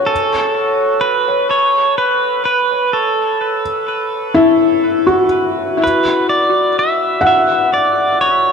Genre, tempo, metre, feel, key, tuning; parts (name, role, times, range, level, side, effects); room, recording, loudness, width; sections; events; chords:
ambient; 63 BPM; 3/4; straight; A4 = 440 Hz
felt-muted upright piano; arpeggios; 0.0-8.5 s; E4 to F#5; -15 LUFS; left 2 dB; tape echo
pedal steel guitar; melody; 0.1-8.5 s; A4 to E5; -15 LUFS; right 2 dB; tape echo
wet plate reverb, RT60 3.7 s; echo-heavy mix; -12 LUFS; side -6 dB against mid
0.0-8.5 A section
0.1 A69; 5.8 N.C.